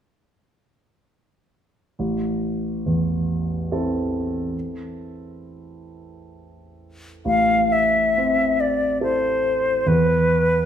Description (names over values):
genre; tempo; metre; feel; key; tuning
classical, romantic duo for flute and grand piano; 59-73 BPM; 3/4; rubato; A minor; A4 = 440 Hz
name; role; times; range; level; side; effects
warm grand piano; accompaniment; 2.0-10.7 s; A1 to A4; -23 LUFS; right 1 dB; none
silver concert flute; melody; 7.3-10.7 s; B4 to F5; -18 LUFS; left 2 dB; none
room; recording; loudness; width
moderate recital hall reverb, RT60 1.4 s; none; -19 LUFS; side -9 dB against mid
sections
2.0-7.3 A section; 7.3-10.7 B section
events
none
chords
2.0 Am; 9.9 E5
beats
| 1.99 2.86 3.71 | 4.54 5.38 6.28 | 7.26 8.17 9.02 | 9.87